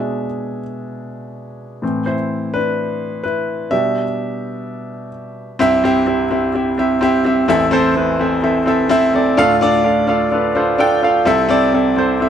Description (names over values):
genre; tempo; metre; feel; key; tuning
pop; 127 BPM; 4/4; straight; unclear; A4 = 440 Hz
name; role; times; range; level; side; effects
clear grand piano; solo; 0.0-12.3 s; A1 to G5; -14 LUFS; equal; none
room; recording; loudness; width
light reverb; none; -14 LUFS; side -9 dB against mid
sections
0.0-5.6 A section; 5.6-12.3 B section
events
grand piano solo 0.0-5.6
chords
0.0 E7/B; 1.8 Amadd9; 3.7 Em7/B; 5.6 C; 7.5 Am; 9.4 Dm; 11.3 Am/C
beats
0.41 0.88 1.35 | 1.82 2.30 2.77 3.24 | 3.71 4.19 4.66 5.13 | 5.60 6.08 6.55 7.02 | 7.49 7.96 8.43 8.90 | 9.38 9.85 10.32 10.79 | 11.26 11.73 12.21